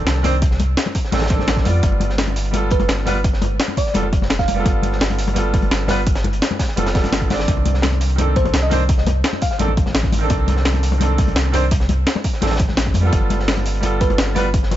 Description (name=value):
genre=liquid drum and bass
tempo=170 BPM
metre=4/4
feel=straight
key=C dorian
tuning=A4 = 440 Hz
part: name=clear concert grand piano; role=accompaniment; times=0.0-14.5 s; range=Eb3 to D5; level=-23 LUFS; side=right 2 dB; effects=digital delay
part: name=sub bass with octave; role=bass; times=0.0-14.8 s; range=F1 to F2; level=-20 LUFS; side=equal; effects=none
part: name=breakbeat sampler-style drum kit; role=drums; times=0.1-14.8 s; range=hi-hat, snare drum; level=-23 LUFS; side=left 1 dB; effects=none
part: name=crunchy breakbeat drum kit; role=drums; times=0.1-14.8 s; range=hi-hat, snare drum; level=-29 LUFS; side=equal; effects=high-pass filter on hats, high-pass filter on snare, high-pass filter on room
part: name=congas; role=percussion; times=0.2-14.8 s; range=none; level=-26 LUFS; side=left 4 dB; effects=none
part: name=electronic kick drum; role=drums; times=0.4-14.6 s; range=none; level=-19 LUFS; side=equal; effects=overdrive
part: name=bell-like FM electric piano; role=melody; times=2.7-4.9, 8.4-9.6, 14.0-14.2 s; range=B4 to F5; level=-27 LUFS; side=right 1 dB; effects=chorus, ping-pong delay
room=studio reverb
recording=nothing above 7.8 kHz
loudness=-15 LUFS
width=side -13 dB against mid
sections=0.0-14.8 A section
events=none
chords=0.0 Cm69; 1.8 G9; 7.5 Cm69; 13.1 G9